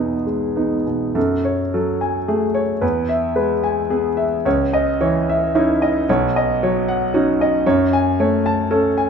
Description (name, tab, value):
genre	neoclassical minimalist piano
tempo	111 BPM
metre	3/4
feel	uneven beats, rubato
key	unclear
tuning	A4 = 440 Hz
part	warm concert grand piano	solo	0.0-9.1 s	B1 to A5	-16 LUFS	equal	none
room	moderate recital hall reverb, RT60 1.6 s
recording	minimal, uncompressed stereo recording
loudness	-16 LUFS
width	side -6 dB against mid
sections	0.0-1.2 A section; 1.2-9.1 B section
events	none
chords	0.0 G#m/E; 1.2 F#madd9; 2.8 E; 4.5 C#madd9; 6.1 Badd9; 7.6 F#madd9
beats	0.56 | 1.16 1.72 2.28 | 2.82 3.36 3.90 | 4.45 5.00 5.54 | 6.08 6.61 7.12 | 7.65 8.19 8.72